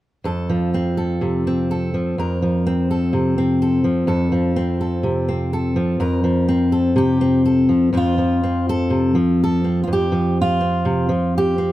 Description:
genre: folk, solo fingerstyle acoustic guitar.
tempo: 62 BPM.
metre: 4/4.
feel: straight.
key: F major.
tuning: A4 = 441 Hz.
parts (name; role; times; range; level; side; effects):
fingerpicked steel-string acoustic guitar; solo; 0.2-11.7 s; F2 to Bb4; -16 LUFS; equal; none.
room: little or no reverb.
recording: close, detailed microphones.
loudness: -16 LUFS.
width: side -15 dB against mid.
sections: 0.2-7.9 A section; 7.9-11.7 B section.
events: none.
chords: 0.2 F; 7.9 Fadd9.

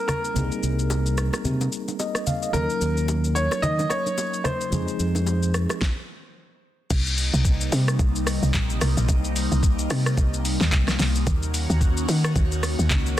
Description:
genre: amapiano.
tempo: 110 BPM.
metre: 4/4.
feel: swing 58% on 16ths.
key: C minor.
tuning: A4 = 439 Hz.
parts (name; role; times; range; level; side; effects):
clear grand piano; melody; 0.0-5.5 s; Bb4 to Eb5; -28 LUFS; equal; digital delay.
tine electric piano; accompaniment; 0.0-5.8 s; F3 to F5; -29 LUFS; equal; medium stereo tremolo.
smooth R&B drum kit; drums; 0.1-13.2 s; crash cymbal, handclaps, hi-hat, kick drum, rim click, shaker, snare drum; -25 LUFS; equal; vintage 12-bit sampler grit.
congas and bongos; percussion; 0.1-5.8 s; none; -30 LUFS; left 2 dB; none.
fingered electric bass; bass; 0.4-5.7 s; C2 to Eb3; -24 LUFS; equal; none.
airy breathy pad; sustained chords; 6.9-13.2 s; C3 to Gb4; -28 LUFS; left 2 dB; chorus, phaser.
woody log drum bass; bass; 6.9-13.2 s; Bb1 to Eb3; -23 LUFS; equal; none.
room: digital ambience.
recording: dense, heavily limited modern master.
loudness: -21 LUFS.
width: side -13 dB against mid.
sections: 0.0-6.9 A section; 6.9-13.2 B section.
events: stop 5.8-6.9; drop 6.9-13.2.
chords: 0.0 Cm7; 2.5 Ebm7; 4.7 Fm7; 6.9 Cm7; 11.3 Ebm7.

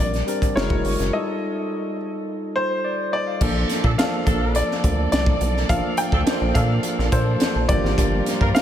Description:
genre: polished 1980s jazz-funk pop.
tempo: 105 BPM.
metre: 4/4.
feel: straight.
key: Bb major.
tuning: A4 = 440 Hz.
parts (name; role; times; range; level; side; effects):
bright baby grand piano; melody; 0.0-8.6 s; C5 to G5; -26 LUFS; left 1 dB; analog delay.
barky tine electric piano; accompaniment; 0.0-8.6 s; F3 to F5; -25 LUFS; equal; wide subtle chorus.
rubbery square bass; bass; 0.0-8.5 s; Gb1 to Bb2; -22 LUFS; equal; none.
crisp fusion drum kit; drums; 0.1-8.6 s; crash cymbal, hi-hat, kick drum, snare drum; -22 LUFS; equal; none.
warm studio string section; sustained chords; 3.4-8.6 s; G3 to D5; -32 LUFS; right 1 dB; none.
mellow horn section; second line; 3.8-8.5 s; F3 to Bb4; -32 LUFS; right 1 dB; none.
room: moderate huge ambient reverb, RT60 3.8 s.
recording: dreamy mix soaked in reverb.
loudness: -19 LUFS.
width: side -10 dB against mid.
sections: 0.0-3.4 A section; 3.4-8.6 B section.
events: break 1.1-3.4.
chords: 0.0 Bb69; 0.6 Gb9; 1.1 F9; 3.4 Bbmaj7; 7.7 Gm7.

